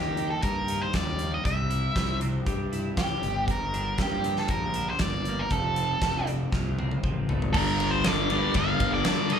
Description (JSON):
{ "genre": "quiet-loud alternative rock", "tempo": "118 BPM", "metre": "4/4", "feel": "straight", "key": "G minor", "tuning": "A4 = 440 Hz", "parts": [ { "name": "octave-fuzz lead guitar", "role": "melody", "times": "0.0-9.4 s", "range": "G4 to F5", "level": "-29 LUFS", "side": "right 1 dB", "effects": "distortion, slapback echo, tape echo" }, { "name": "twelve-string electric guitar", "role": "arpeggios", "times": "0.0-7.6 s", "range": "F2 to E4", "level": "-35 LUFS", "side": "right 2 dB", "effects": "wide subtle chorus" }, { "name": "fuzz fingered electric bass", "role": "bass", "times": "0.0-9.0 s", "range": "F1 to Eb3", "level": "-30 LUFS", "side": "equal", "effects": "overdrive" }, { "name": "huge arena drum kit", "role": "drums", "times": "0.2-9.4 s", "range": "crash cymbal, hi-hat, kick drum, ride cymbal, snare drum, toms", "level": "-29 LUFS", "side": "equal", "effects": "none" }, { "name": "percussive tonewheel organ", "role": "sustained chords", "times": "7.5-9.4 s", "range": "D3 to F4", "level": "-38 LUFS", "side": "equal", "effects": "none" }, { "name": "cranked stack guitar", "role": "riff", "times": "7.5-9.4 s", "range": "G2 to G3", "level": "-29 LUFS", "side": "right 12 dB", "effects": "overdrive, slapback echo" }, { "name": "thick fuzz guitar", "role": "riff", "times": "7.5-9.4 s", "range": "G2 to G3", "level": "-28 LUFS", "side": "left 13 dB", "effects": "distortion, slapback echo" } ], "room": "little or no reverb", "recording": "live gig heard through the venue's PA, club reverb", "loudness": "-24 LUFS", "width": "side -8 dB against mid", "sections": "0.0-7.5 A section; 7.5-9.4 B section", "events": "drum fill 6.5-7.5", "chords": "0.0 Eb; 1.4 C; 3.2 Gm; 5.5 F; 7.5 Gm7" }